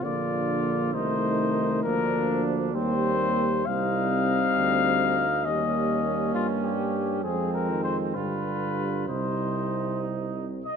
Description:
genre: classical, brass quintet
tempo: 66 BPM (dotted quarters)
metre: 6/8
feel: straight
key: Bb major, C minor from 3.7 s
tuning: A4 = 440 Hz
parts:
  - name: mellow trumpet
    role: melody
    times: 0.0-10.8 s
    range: F4 to F5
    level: -28 LUFS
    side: left 7 dB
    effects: none
  - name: clear flugelhorn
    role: second line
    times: 0.0-10.8 s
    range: C4 to Eb5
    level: -33 LUFS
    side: right 10 dB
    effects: none
  - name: mellow French horn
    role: accompaniment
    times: 0.0-10.6 s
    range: G3 to C4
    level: -30 LUFS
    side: left 2 dB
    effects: none
  - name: warm trombone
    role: accompaniment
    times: 0.0-10.6 s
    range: C3 to G3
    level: -31 LUFS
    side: right 6 dB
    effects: none
  - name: clear bass trombone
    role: bass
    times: 0.0-10.7 s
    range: Bb1 to G2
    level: -31 LUFS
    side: right 1 dB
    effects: none
room: moderate scoring stage reverb, RT60 1.6 s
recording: none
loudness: -23 LUFS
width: side -7 dB against mid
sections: 0.0-10.8 A section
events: none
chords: 0.0 Bb; 0.9 Adim/C; 1.8 Bb/D; 2.7 Cm7/Eb; 3.7 Cm; 5.5 Eb7; 7.2 Fm; 8.2 G7; 9.1 Cm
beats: | 0.04 0.94 | 1.84 2.74 | 3.67 4.57 | 5.46 6.35 | 7.24 8.15 | 9.09 10.03

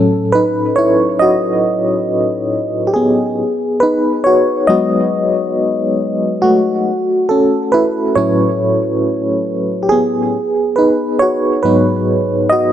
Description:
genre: R&B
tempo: 69 BPM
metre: 4/4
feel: swing 54% on 16ths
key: G# phrygian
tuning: A4 = 440 Hz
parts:
  - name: FM electric piano with tremolo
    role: solo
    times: 0.0-12.7 s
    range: G#2 to D#5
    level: -12 LUFS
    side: equal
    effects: tape echo
room: moderate lush hall reverb, RT60 2.7 s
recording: nothing above 10.8 kHz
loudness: -12 LUFS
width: side -10 dB against mid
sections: 0.0-12.7 A section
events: FM electric piano solo 0.0-12.7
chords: 0.0 A69; 3.4 G#m7; 6.9 A69; 10.3 G#m7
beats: 0.78 1.65 2.52 | 3.39 4.26 5.12 6.00 | 6.86 7.73 8.60 9.47 | 10.34 11.21 12.08

